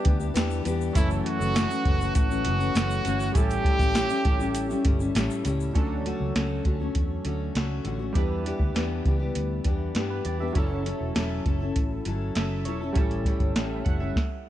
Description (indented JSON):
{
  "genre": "indie pop, bedroom pop",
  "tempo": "100 BPM",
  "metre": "4/4",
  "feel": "straight",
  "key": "D major",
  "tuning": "A4 = 440 Hz",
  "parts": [
    { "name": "bright trumpet", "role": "melody", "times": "0.0-5.1 s", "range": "E4 to G4", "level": "-29 LUFS", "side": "right 2 dB", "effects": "lush chorus, slapback echo" },
    { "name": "chorused retro synth keys", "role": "accompaniment", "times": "0.0-14.3 s", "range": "F3 to F#5", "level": "-34 LUFS", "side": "right 6 dB", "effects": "cassette tape" },
    { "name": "fingerpicked steel-string acoustic guitar", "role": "accompaniment", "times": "0.0-14.2 s", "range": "F#2 to A4", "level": "-30 LUFS", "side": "left 6 dB", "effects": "lush chorus, warbly pitch drift" },
    { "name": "soft vintage rhythm box", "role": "drums", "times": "0.0-14.3 s", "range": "hi-hat, kick drum, snare drum", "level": "-26 LUFS", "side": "equal", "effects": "none" },
    { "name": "vintage muted fingered electric bass", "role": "bass", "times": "0.1-14.1 s", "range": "E1 to G2", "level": "-30 LUFS", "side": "equal", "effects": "none" },
    { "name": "egg shaker", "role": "percussion", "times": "0.2-5.7 s", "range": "none", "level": "-46 LUFS", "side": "left 10 dB", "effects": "none" }
  ],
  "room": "little or no reverb",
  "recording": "none",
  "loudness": "-23 LUFS",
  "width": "side -12 dB against mid",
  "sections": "0.0-5.8 A section; 5.8-14.5 B section",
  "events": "stop 14.2-14.5",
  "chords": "0.0 Em7; 1.0 F#m7; 3.4 A7; 5.8 Dmaj7; 8.2 Em7; 10.6 F#m7; 13.0 A7",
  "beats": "0.35 | 0.95 1.55 2.15 2.75 | 3.35 3.95 4.55 5.15 | 5.75 6.35 6.95 7.55 | 8.15 8.76 9.36 9.96 | 10.56 11.16 11.76 12.36 | 12.96 13.56 14.16"
}